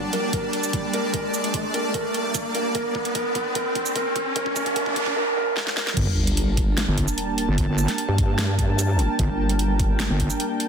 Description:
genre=heavy wobble dubstep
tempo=149 BPM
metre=4/4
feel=half-time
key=G minor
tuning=A4 = 440 Hz
part: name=felt-muted upright piano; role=melody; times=0.0-6.0 s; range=Bb4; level=-27 LUFS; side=right 2 dB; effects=low-pass filter, dub echo
part: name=supersaw pad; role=sustained chords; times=0.0-10.7 s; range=G3 to A5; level=-32 LUFS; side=equal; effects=sidechain pumping, low-pass filter
part: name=riser, noise sweep and sub drop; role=sound effects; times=0.0-7.6 s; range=none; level=-27 LUFS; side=equal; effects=none
part: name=airy breathy pad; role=texture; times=0.0-10.7 s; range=Bb3 to A5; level=-30 LUFS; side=right 2 dB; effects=chorus, sidechain pumping
part: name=dubstep drum kit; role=drums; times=0.1-10.7 s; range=crash cymbal, hi-hat, shaker, snare drum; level=-28 LUFS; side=right 1 dB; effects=none
part: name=electronic kick drum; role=drums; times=0.3-10.3 s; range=none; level=-26 LUFS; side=equal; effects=none
part: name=wobble bass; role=bass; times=6.0-10.3 s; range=G1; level=-22 LUFS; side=equal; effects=chorus, overdrive
part: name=vowel-sweep wobble bass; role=bass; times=6.1-10.1 s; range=G1 to G2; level=-22 LUFS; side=equal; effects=chorus, overdrive
room=light reverb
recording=dense, heavily limited modern master, high-pass filter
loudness=-21 LUFS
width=side -7 dB against mid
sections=0.0-6.0 A section; 6.0-10.7 B section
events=build-up 0.0-6.0; drum fill 0.0-5.2, 5.6-6.0; riser 0.0-5.2; noise sweep 4.4-6.0; drop 6.0-10.7; impact 6.0-7.6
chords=0.0 Gmadd9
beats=0.33 0.73 | 1.14 1.54 1.94 2.35 | 2.75 3.15 3.55 3.96 | 4.36 4.76 5.16 5.57 | 5.97 6.37 6.78 7.18 | 7.58 7.98 8.38 8.79 | 9.19 9.59 10.00 10.40

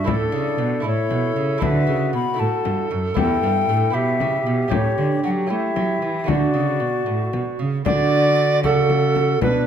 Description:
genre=classical, renaissance-style consort dance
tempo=78 BPM (dotted quarters)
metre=6/8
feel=straight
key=D major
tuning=A4 = 440 Hz
part: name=bright baroque flute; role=melody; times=0.0-9.7 s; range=A4 to B5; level=-25 LUFS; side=left 5 dB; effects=none
part: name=bright tenor recorder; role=second line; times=0.0-9.7 s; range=E4 to D5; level=-24 LUFS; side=right 4 dB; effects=none
part: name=clear trombone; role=accompaniment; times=0.0-9.7 s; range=D4 to G4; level=-27 LUFS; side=left 4 dB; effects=none
part: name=lute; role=accompaniment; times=0.0-9.7 s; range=E2 to D5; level=-26 LUFS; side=right 6 dB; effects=none
part: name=dark cello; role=bass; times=0.0-9.7 s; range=E2 to A3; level=-23 LUFS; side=right 1 dB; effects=none
part: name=frame drum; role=percussion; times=0.1-9.7 s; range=none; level=-26 LUFS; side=left 7 dB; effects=none
room=moderate recital hall reverb, RT60 1.4 s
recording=none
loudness=-18 LUFS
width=side -8 dB against mid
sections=0.0-7.9 A section; 7.9-9.7 B section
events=none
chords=0.1 Asus4; 0.9 A; 3.2 Em; 4.7 A7; 6.3 D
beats=| 0.08 0.85 | 1.63 2.40 | 3.17 3.95 | 4.72 5.50 | 6.29 7.08 | 7.86 8.64 | 9.42

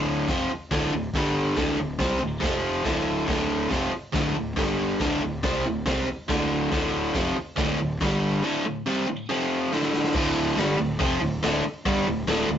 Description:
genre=garage rock duo or trio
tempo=140 BPM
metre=4/4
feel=straight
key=D minor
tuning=A4 = 440 Hz
part: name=biting overdriven guitar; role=riff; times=0.0-12.6 s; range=D2 to C4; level=-24 LUFS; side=equal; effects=none
part: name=fuzz fingered electric bass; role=bass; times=0.0-12.6 s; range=D1 to C2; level=-33 LUFS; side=equal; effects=overdrive
part: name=raw garage drum kit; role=drums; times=0.3-12.4 s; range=crash cymbal, hi-hat, kick drum, snare drum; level=-31 LUFS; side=equal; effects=none
room=moderate studio reverb, RT60 0.6 s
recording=rough rehearsal-room recording, tube saturation, nothing above 7.8 kHz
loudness=-23 LUFS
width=side -9 dB against mid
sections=0.0-10.1 A section; 10.1-12.6 B section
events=drum fill 9.7-10.1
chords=0.0 Dm; 1.1 G5; 1.6 D5; 2.4 F5; 2.9 Dm; 4.6 G5; 5.0 Dm; 8.0 G5; 8.4 D5; 9.3 F5; 9.7 D5; 10.1 Dm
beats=0.29 0.72 1.15 | 1.58 2.01 2.44 2.86 | 3.29 3.72 4.15 4.58 | 5.01 5.44 5.86 6.29 | 6.72 7.15 7.58 8.01 | 8.44 8.86 9.29 9.72 | 10.14 10.57 11.00 11.42 | 11.85 12.27

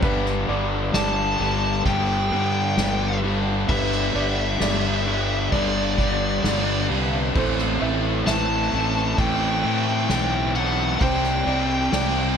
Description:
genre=post-rock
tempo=66 BPM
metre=4/4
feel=straight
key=G major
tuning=A4 = 439 Hz
part: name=felt-muted upright piano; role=arpeggios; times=0.0-12.4 s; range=B4 to E5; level=-32 LUFS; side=right 4 dB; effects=slapback echo
part: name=cranked stack guitar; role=riff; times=0.0-12.4 s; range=G2 to C4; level=-26 LUFS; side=left 11 dB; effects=overdrive
part: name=raw garage guitar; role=riff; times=0.0-12.4 s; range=G2 to E4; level=-28 LUFS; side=right 13 dB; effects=overdrive, phaser
part: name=fuzz fingered electric bass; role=bass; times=0.0-12.4 s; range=G1 to A2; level=-26 LUFS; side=equal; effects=overdrive
part: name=soft-mallet drum kit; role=drums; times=0.0-12.1 s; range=crash cymbal, kick drum, ride cymbal, snare drum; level=-27 LUFS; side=right 1 dB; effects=none
part: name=fuzz lead guitar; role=melody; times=0.9-12.4 s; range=D5 to A5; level=-25 LUFS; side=left 2 dB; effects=distortion, slapback echo
room=light reverb, small room ambience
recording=none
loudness=-19 LUFS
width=side -7 dB against mid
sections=0.0-12.4 A section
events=none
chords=0.0 G; 7.4 Am; 11.0 Csus2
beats=| 0.03 0.95 1.86 2.78 | 3.69 4.61 5.53 6.44 | 7.35 8.27 9.18 10.10 | 11.01 11.93

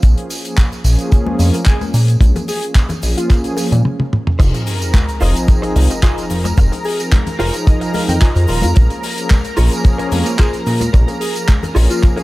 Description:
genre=nu-disco, nu disco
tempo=110 BPM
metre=4/4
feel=straight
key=F minor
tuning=A4 = 440 Hz
part: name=warm analog pad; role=accompaniment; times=0.0-12.2 s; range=F3 to Bb4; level=-22 LUFS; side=equal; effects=chorus, sidechain pumping, tape echo
part: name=chorused synth bass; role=bass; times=0.0-11.9 s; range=Eb1 to Bb2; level=-13 LUFS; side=equal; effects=none
part: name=damped 70s drum kit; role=drums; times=0.0-12.2 s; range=crash cymbal, handclaps, hi-hat, tambourine, toms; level=-23 LUFS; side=equal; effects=none
part: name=kick drum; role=drums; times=0.0-12.1 s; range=none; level=-11 LUFS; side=equal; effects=none
part: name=tube shaker, congas and bongos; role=percussion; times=0.0-12.1 s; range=none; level=-26 LUFS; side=left 3 dB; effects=none
part: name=wide unison lead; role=melody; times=1.7-12.2 s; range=F4 to Bb4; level=-25 LUFS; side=left 1 dB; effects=lush chorus, tape echo
part: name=lush unison pad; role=sustained chords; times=4.4-12.2 s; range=Bb4 to Bb5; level=-26 LUFS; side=equal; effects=chorus, sidechain pumping
part: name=direct-recorded clean electric guitar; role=riff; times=4.4-12.2 s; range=F4 to Bb5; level=-24 LUFS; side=right 1 dB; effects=ensemble chorus
part: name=sub drop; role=sound effects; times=4.4-6.6 s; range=none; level=-23 LUFS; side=equal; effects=none
room=small room reverb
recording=none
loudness=-12 LUFS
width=side -19 dB against mid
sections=0.0-4.4 A section; 4.4-12.2 B section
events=drum fill 3.8-4.4; stop 3.8-4.4; drop 4.4-12.2; impact 4.4-6.6; clean electric guitar fill 7.1-8.8, 12.0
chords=0.0 Bbm7; 4.4 Fm7; 8.8 Bbm7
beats=| 0.03 0.58 1.12 1.67 | 2.21 2.76 3.30 3.85 | 4.39 4.94 5.49 6.03 | 6.58 7.12 7.67 8.21 | 8.76 9.30 9.85 10.39 | 10.94 11.49 12.03

